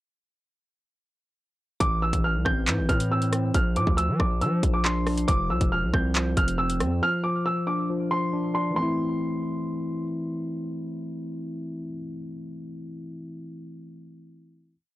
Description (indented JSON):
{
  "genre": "hip hop, drill",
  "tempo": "138 BPM",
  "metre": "4/4",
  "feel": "half-time",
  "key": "A phrygian",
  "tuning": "A4 = 439 Hz",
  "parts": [
    { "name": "warm upright piano", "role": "melody", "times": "1.8-10.0 s", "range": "C6 to G6", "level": "-28 LUFS", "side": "right 1 dB", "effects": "low-pass filter" },
    { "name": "mellow tine electric piano", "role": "accompaniment", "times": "1.8-14.8 s", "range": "E3 to E4", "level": "-29 LUFS", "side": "left 1 dB", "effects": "wide subtle chorus, low-pass filter" },
    { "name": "distorted 808-style bass", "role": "bass", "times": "1.8-7.0 s", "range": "E1 to F3", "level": "-27 LUFS", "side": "equal", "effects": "distortion" },
    { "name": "drill drum kit", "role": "drums", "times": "1.8-6.9 s", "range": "handclaps, hi-hat, kick drum, rim click", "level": "-25 LUFS", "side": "equal", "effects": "none" }
  ],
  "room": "little or no reverb",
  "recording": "dry, gritty hardware recording, cassette tape",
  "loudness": "-23 LUFS",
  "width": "side -16 dB against mid",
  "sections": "1.8-8.8 hook; 8.8-12.2 final chord",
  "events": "none",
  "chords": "1.8 Am; 3.5 Bb; 5.3 F5; 7.0 Dm; 8.8 Am",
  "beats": "| 1.81 2.24 2.67 3.11 | 3.54 3.98 4.41 4.85 | 5.28 5.72 6.15 6.59 | 7.02 7.46 7.89 8.33 | 8.76 9.20 9.63 10.07 | 10.50 10.94 11.37 11.81"
}